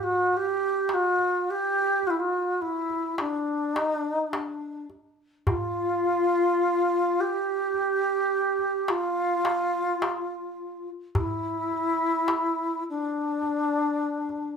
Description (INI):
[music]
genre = Arabic maqam ensemble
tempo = 105 BPM (eighths)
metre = 10/8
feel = straight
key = unclear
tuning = A4 = 440 Hz
[part]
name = mellow alto flute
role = melody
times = 0.0-14.5 s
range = D4 to G4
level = -24 LUFS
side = equal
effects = plate reverb
[part]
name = darbuka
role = percussion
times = 0.3-14.4 s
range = none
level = -30 LUFS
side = left 1 dB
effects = none
[sound]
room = wet studio reverb, RT60 0.5 s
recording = heard from further back in the room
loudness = -24 LUFS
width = side -6 dB against mid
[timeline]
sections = 0.0-5.5 A section; 5.5-14.6 B section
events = none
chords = none